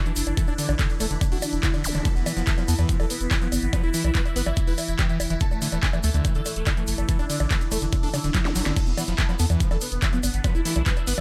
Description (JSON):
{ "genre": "psychedelic trance", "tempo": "143 BPM", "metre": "4/4", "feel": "straight", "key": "unclear", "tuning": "A4 = 440 Hz", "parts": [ { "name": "overtone-sweeping drone", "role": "sustained chords", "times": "0.0-11.2 s", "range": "E3 to E4", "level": "-37 LUFS", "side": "equal", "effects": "chorus, built-in reverb, sidechain pumping" }, { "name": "dense compressed supersaw", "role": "melody", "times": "0.1-11.2 s", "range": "A3 to B4", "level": "-34 LUFS", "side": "equal", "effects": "phaser, sidechain pumping, delay" }, { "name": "screaming distorted acid line", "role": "riff", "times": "0.1-11.2 s", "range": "C#3 to E4", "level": "-33 LUFS", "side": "equal", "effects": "distortion, chorus, sidechain pumping, delay" }, { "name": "drum and bass drum kit", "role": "drums", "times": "0.1-11.2 s", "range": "bongos, crash cymbal, handclaps, hi-hat, snare drum, toms", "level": "-32 LUFS", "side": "equal", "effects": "overdrive" }, { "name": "tube shaker", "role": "percussion", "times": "0.1-11.2 s", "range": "none", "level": "-39 LUFS", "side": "equal", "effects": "none" }, { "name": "round analog bass", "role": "bass", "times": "0.2-11.2 s", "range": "D1 to E2", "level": "-28 LUFS", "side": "equal", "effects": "none" }, { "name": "electronic kick drum", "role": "drums", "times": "0.4-10.9 s", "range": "none", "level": "-26 LUFS", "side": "equal", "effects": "overdrive" }, { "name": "zap", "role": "sound effects", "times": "1.8-1.9, 8.4-8.6 s", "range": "none", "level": "-38 LUFS", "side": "equal", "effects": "none" }, { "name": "formant-sweep wobble bass", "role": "second line", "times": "3.7-3.8, 10.4-10.8 s", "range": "A3 to B3", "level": "-44 LUFS", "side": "equal", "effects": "none" } ], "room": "little or no reverb", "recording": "none", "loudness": "-24 LUFS", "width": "mono", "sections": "0.0-11.2 A section", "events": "drum fill 8.3-8.8", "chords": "0.0 D5; 2.1 E5; 5.4 D5; 8.8 E5" }